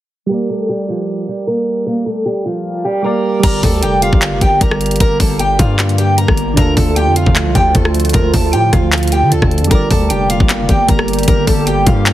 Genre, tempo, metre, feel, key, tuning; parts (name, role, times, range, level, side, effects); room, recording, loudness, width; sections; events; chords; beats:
hip hop, trap; 153 BPM; 4/4; half-time; G minor; A4 = 440 Hz
picked old ladder-braced acoustic guitar; melody; 0.3-12.1 s; F3 to Bb5; -17 LUFS; equal
soft electric-piano-like synth keys; accompaniment; 0.3-12.1 s; D3 to D5; -21 LUFS; right 3 dB; chorus
warbly tape-like pad; sustained chords; 4.3-12.1 s; D3 to G4; -20 LUFS; right 2 dB; chorus, built-in reverb
distorted 808-style bass; bass; 3.4-12.1 s; F1 to D3; -16 LUFS; equal; distortion
trap drum kit; drums; 3.4-12.1 s; crash cymbal, handclaps, hi-hat, kick drum, rim click; -14 LUFS; equal
little or no reverb; heavily compressed radio sound, low-pass filter; -11 LUFS; side -13 dB against mid
0.3-3.4 A section; 3.4-12.1 B section
filter sweep 0.3-3.4
0.3 Gm; 6.6 Dm; 9.7 Gm
| 0.30 0.69 1.08 1.47 | 1.87 2.26 2.65 3.04 | 3.44 3.83 4.22 4.61 | 5.00 5.40 5.79 6.18 | 6.57 6.96 7.36 7.75 | 8.14 8.53 8.93 9.32 | 9.71 10.10 10.49 10.89 | 11.28 11.67 12.06